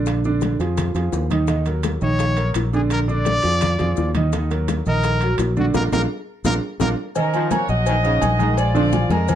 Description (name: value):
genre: latin, salsa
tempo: 169 BPM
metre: 4/4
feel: straight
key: Eb minor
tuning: A4 = 441 Hz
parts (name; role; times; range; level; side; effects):
- clear grand piano; accompaniment; 0.0-9.4 s; D3 to Eb6; -23 LUFS; right 4 dB; none
- fingered electric bass; bass; 0.0-9.4 s; Bb1 to F2; -21 LUFS; left 1 dB; none
- bongos and cowbell; percussion; 0.1-9.4 s; none; -30 LUFS; left 8 dB; none
- congas; percussion; 0.1-9.4 s; none; -27 LUFS; left 4 dB; none
- maracas; percussion; 0.1-9.4 s; none; -40 LUFS; left 11 dB; none
- timbales and agogo bells; percussion; 0.1-9.4 s; none; -29 LUFS; right 2 dB; none
- brilliant trumpet; melody; 2.0-6.9 s; Gb4 to D5; -24 LUFS; left 2 dB; plate reverb
- clear horn section; melody; 7.2-9.4 s; Db4 to Eb5; -24 LUFS; equal; plate reverb
- bright trombone section; second line; 7.3-9.2 s; Db3 to F3; -26 LUFS; left 4 dB; none
room: moderate studio reverb, RT60 0.5 s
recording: dark, warm production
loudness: -17 LUFS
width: side -10 dB against mid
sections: 0.0-7.2 A section; 7.2-9.4 B section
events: band accent 5.7-7.2; drum fill 6.1-7.2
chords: 0.1 Bb7; 1.5 Ebm7; 2.9 Bb7; 4.3 Ebm; 5.7 Bb; 7.2 Ebm7; 8.6 Bb7